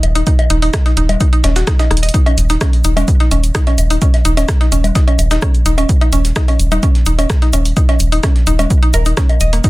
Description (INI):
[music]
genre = minimal techno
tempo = 128 BPM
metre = 4/4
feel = straight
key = unclear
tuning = A4 = 440 Hz
[part]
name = punchy sub bass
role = bass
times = 0.0-9.6 s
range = Eb1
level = -14 LUFS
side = equal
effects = sidechain pumping
[part]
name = punchy analog drum machine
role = drums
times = 0.0-9.7 s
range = hi-hat, rim click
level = -22 LUFS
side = right 1 dB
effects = soft clipping on snare
[part]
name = bongos, woodblock and congas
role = percussion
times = 0.0-9.4 s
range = none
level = -22 LUFS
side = left 2 dB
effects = overdrive, dub echo
[part]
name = mallet-like synth pluck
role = riff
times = 0.2-9.7 s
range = Bb3 to Eb5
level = -20 LUFS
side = equal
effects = chorus, sidechain pumping, dub echo
[part]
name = dusty soul sampler-style drum kit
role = drums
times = 0.2-9.7 s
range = hi-hat, shaker, snare drum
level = -29 LUFS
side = equal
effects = high-pass filter on snare, sidechain pumping on perc, high-pass filter on perc, sidechain pumping on hats, high-pass filter on hats
[part]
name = electronic kick drum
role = drums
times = 0.3-9.7 s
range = none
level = -13 LUFS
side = equal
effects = none
[part]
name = cabasa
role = percussion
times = 2.1-9.7 s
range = none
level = -30 LUFS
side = left 1 dB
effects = none
[sound]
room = little or no reverb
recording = dense, heavily limited modern master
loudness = -10 LUFS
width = side -19 dB against mid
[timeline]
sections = 0.0-9.7 A section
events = drum fill 1.9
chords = none